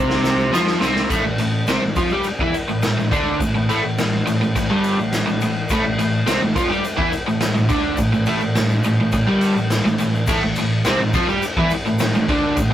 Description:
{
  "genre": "garage rock duo or trio",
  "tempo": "105 BPM",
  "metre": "4/4",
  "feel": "straight",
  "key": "unclear",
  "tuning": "A4 = 440 Hz",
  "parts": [
    { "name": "overdriven electric guitar", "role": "riff", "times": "0.0-12.7 s", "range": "G2 to G4", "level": "-18 LUFS", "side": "equal", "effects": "none" },
    { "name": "fuzz picked electric bass", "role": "bass", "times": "0.0-12.7 s", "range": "G1 to G2", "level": "-28 LUFS", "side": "equal", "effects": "overdrive" },
    { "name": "raw garage drum kit", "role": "drums", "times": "0.1-12.7 s", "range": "crash cymbal, kick drum, ride cymbal, snare drum", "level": "-22 LUFS", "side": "equal", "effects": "none" },
    { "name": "egg shaker", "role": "percussion", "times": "0.1-12.7 s", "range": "none", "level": "-41 LUFS", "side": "left 5 dB", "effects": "none" }
  ],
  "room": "light reverb",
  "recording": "rough rehearsal-room recording, tube saturation",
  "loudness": "-16 LUFS",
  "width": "side -11 dB against mid",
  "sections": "0.0-1.1 A section; 1.1-12.7 B section",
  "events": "drum fill 0.0-1.1",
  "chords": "0.0 C5; 1.1 N.C.",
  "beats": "0.53 | 1.11 1.68 2.25 2.83 | 3.40 3.97 4.54 5.12 | 5.69 6.26 6.84 7.41 | 7.99 8.56 9.13 9.71 | 10.28 10.85 11.43 12.00 | 12.58"
}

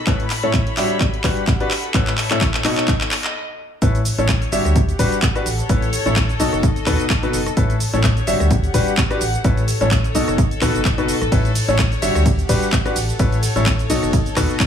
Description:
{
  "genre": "piano house",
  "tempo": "128 BPM",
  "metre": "4/4",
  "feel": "swing 55% on 16ths",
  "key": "A mixolydian",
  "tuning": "A4 = 440 Hz",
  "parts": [
    { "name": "rich studio string section", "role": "texture", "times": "0.0-14.7 s", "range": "G4 to B5", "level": "-28 LUFS", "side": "left 2 dB", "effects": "sidechain pumping" },
    { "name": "clear grand piano", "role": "riff", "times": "0.1-14.5 s", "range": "A2 to E5", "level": "-20 LUFS", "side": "left 1 dB", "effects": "sidechain pumping, low-pass filter, tape echo" },
    { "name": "electronic kick drum", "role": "drums", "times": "0.1-14.7 s", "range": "none", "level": "-19 LUFS", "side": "equal", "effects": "none" },
    { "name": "house drum kit", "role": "drums", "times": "0.1-14.7 s", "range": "cabasa, handclaps, hi-hat, ride cymbal, rim click", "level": "-24 LUFS", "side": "equal", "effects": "high-pass filter on snare, high-pass filter on hats, high-pass filter on perc, high-pass filter on cymbals" },
    { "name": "organ-like FM bass", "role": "bass", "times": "3.8-14.4 s", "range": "D1 to D#2", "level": "-22 LUFS", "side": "equal", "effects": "sidechain pumping" }
  ],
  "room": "light reverb, digital ambience",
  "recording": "none",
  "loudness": "-16 LUFS",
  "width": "side -8 dB against mid",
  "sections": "0.0-3.8 A section; 3.8-14.7 B section",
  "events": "build-up 0.0-3.8; drum fill 0.0-3.4; filter sweep on grand piano 0.0-3.8; stop 3.4-3.8; drop 3.8-14.7",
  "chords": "0.1 Aadd9; 0.8 Gmaj7; 1.7 Aadd9; 2.6 B7; 3.8 Aadd9; 4.5 Gmaj7; 5.5 Aadd9; 6.4 B7; 7.6 Aadd9; 8.3 Gmaj7; 9.2 Aadd9; 10.1 B7; 11.3 Aadd9; 12.0 Gmaj7; 13.0 Aadd9; 13.9 B7",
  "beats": "| 0.07 0.54 1.01 1.48 | 1.95 2.41 2.88 3.35 | 3.82 4.29 4.76 5.23 | 5.70 6.16 6.63 7.10 | 7.57 8.04 8.51 8.98 | 9.45 9.91 10.38 10.85 | 11.32 11.79 12.26 12.73 | 13.20 13.66 14.13 14.60"
}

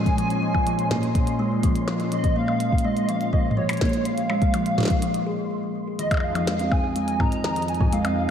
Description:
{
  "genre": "IDM",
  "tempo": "124 BPM",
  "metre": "4/4",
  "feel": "straight",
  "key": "unclear",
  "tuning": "A4 = 439 Hz",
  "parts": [
    { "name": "warbly nostalgic lead", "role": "melody", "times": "0.0-8.3 s", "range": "Db5 to Bb5", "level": "-28 LUFS", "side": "right 1 dB", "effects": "ensemble chorus, analog delay" },
    { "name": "warm analog pad", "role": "sustained chords", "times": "0.0-8.3 s", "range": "F2 to Eb5", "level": "-29 LUFS", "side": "equal", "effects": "lush chorus" },
    { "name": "kalimba", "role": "arpeggios", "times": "0.0-8.2 s", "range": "Eb3 to Ab4", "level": "-25 LUFS", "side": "equal", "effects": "vintage 12-bit sampler grit, ping-pong delay" },
    { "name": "flickering grainy texture", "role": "texture", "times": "0.0-5.5 s", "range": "C6", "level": "-40 LUFS", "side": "equal", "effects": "built-in reverb, analog chorus" },
    { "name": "electronic kick drum", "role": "drums", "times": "0.1-7.9 s", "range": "none", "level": "-23 LUFS", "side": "equal", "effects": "none" },
    { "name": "glitchy drum kit", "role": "drums", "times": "0.1-8.1 s", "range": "hi-hat, percussion blips, snare drum, toms", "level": "-30 LUFS", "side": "equal", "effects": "none" }
  ],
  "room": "wet lush hall reverb, RT60 1.9 s, digital ambience",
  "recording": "dreamy mix soaked in reverb",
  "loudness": "-20 LUFS",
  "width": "side -8 dB against mid",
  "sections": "0.0-6.0 A section; 6.0-8.3 B section",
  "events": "stop 5.5-6.0",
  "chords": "0.0 Bbm7; 6.0 Fm7",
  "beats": "| 0.18 0.67 1.15 1.64 | 2.12 2.60 3.09 3.57 | 4.05 4.54 5.02 5.51 | 5.99 6.47 6.96 7.44 | 7.93"
}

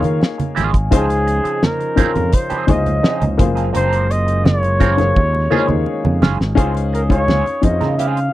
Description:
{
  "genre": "lush 1970s-style soul",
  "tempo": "85 BPM",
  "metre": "4/4",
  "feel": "straight",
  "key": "Db major",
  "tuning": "A4 = 439 Hz",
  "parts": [
    { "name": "breathy flugelhorn", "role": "melody", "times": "0.0-8.3 s", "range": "Ab4 to F5", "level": "-20 LUFS", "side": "equal", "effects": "tape echo" },
    { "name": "warm baby grand piano", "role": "accompaniment", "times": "0.0-8.3 s", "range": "Db3 to Db5", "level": "-22 LUFS", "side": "left 6 dB", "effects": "none" },
    { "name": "clean electric guitar", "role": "riff", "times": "0.0-8.2 s", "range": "F3 to Bb4", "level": "-23 LUFS", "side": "right 9 dB", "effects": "wah" },
    { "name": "fingered electric bass", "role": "bass", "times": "0.0-8.3 s", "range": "Gb1 to Eb3", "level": "-18 LUFS", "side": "equal", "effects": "none" },
    { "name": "damped 70s drum kit", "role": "drums", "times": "0.0-8.3 s", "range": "hi-hat, kick drum, snare drum", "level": "-15 LUFS", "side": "equal", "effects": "none" },
    { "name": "congas", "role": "percussion", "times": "0.0-8.2 s", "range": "none", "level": "-23 LUFS", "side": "right 4 dB", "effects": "none" },
    { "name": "vibraphone with medium mallets", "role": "texture", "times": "0.6-8.3 s", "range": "Ab5 to Eb6", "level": "-34 LUFS", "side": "equal", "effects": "none" },
    { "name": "mellow tonewheel organ", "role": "sustained chords", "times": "0.9-6.6 s", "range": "Db3 to C5", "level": "-27 LUFS", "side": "right 2 dB", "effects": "fast rotary speaker, overdrive" }
  ],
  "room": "little or no reverb",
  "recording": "dry, close 1970s-style studio recording",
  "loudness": "-14 LUFS",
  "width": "side -15 dB against mid",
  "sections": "0.0-6.6 A section; 6.6-8.3 B section",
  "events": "drum fill 5.2-6.6",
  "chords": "0.0 Eb9sus4; 0.9 Dbmaj9; 3.4 Gbmaj9#11; 5.2 Eb9sus4; 6.6 Dbmaj7",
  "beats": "0.21 | 0.92 1.63 2.33 3.04 | 3.74 4.45 5.16 5.86 | 6.57 7.28 7.98"
}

